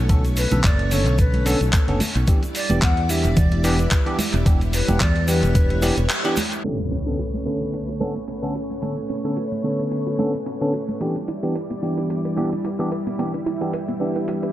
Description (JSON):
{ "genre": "nu-disco, nu disco", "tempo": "110 BPM", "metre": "4/4", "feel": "swing 55% on 16ths", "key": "B minor", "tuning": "A4 = 440 Hz", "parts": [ { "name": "string machine, full ensemble", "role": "sustained chords", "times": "0.0-14.5 s", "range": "G3 to E5", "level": "-28 LUFS", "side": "equal", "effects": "ensemble chorus, sidechain pumping" }, { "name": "fingered electric bass", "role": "bass", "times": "0.0-6.1 s", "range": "E1 to E2", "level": "-20 LUFS", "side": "equal", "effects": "none" }, { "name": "bell-like tine electric piano", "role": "accompaniment", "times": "0.1-14.5 s", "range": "D3 to A4", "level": "-25 LUFS", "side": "equal", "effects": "phaser, sidechain pumping, dub echo" }, { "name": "dusty soul sampler-style drum kit", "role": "drums", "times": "0.1-14.5 s", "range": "handclaps, hi-hat", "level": "-26 LUFS", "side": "equal", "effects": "dub echo" }, { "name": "electronic kick drum", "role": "drums", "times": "0.1-5.7 s", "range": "none", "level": "-18 LUFS", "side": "equal", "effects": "none" }, { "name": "egg shaker and congas", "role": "percussion", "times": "0.1-6.6 s", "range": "none", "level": "-29 LUFS", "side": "right 2 dB", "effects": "dub echo" }, { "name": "mellow hollow silver concert flute", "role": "melody", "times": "0.4-6.1 s", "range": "A4 to F#5", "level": "-29 LUFS", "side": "left 2 dB", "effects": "dub echo" }, { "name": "soft round pluck", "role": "arpeggios", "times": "6.6-14.5 s", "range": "A3 to B4", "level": "-30 LUFS", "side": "right 3 dB", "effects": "chorus, sidechain pumping, dub echo" }, { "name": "impact", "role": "sound effects", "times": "6.6-8.8 s", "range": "none", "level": "-30 LUFS", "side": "equal", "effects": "none" } ], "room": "light reverb, digital ambience", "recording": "echo-heavy mix, low-pass filter", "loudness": "-19 LUFS", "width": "side -14 dB against mid", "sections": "0.0-6.6 A section; 6.6-14.5 B section", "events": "break 6.1-6.6; band accent 6.1; impact 6.6-8.8; filter sweep on string machine 6.6-14.5; filter sweep on synth arpeggio sound 6.6-14.5", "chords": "0.0 Bm9; 2.3 Em7; 6.6 Bm9; 11.0 Em7" }